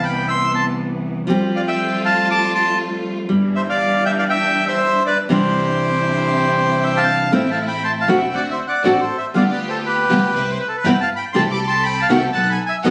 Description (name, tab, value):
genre	tango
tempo	119 BPM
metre	4/4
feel	rubato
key	C major, A minor from 7.3 s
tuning	A4 = 440 Hz
part	bandoneon	melody	0.0-12.9 s	G4 to E6	-20 LUFS	equal	plate reverb
part	nylon-string guitar	accompaniment	0.0-12.9 s	B2 to G4	-22 LUFS	equal	none
part	clear studio string section	stabs	0.0-12.9 s	E3 to B4	-29 LUFS	equal	none
part	upright bass	bass	0.0-12.9 s	E1 to F2	-32 LUFS	equal	none
room	moderate club reverb, RT60 0.6 s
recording	recorded on a phone in the room, studio reverb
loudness	-18 LUFS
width	mono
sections	0.0-7.3 A section; 7.3-12.9 B section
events	none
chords	0.0 Cmaj7; 1.3 Fadd9; 3.3 G5; 5.3 Cadd9; 7.3 Am; 8.3 D7; 9.3 G7/D; 10.3 Cmaj7; 11.3 Am7/C; 12.3 B7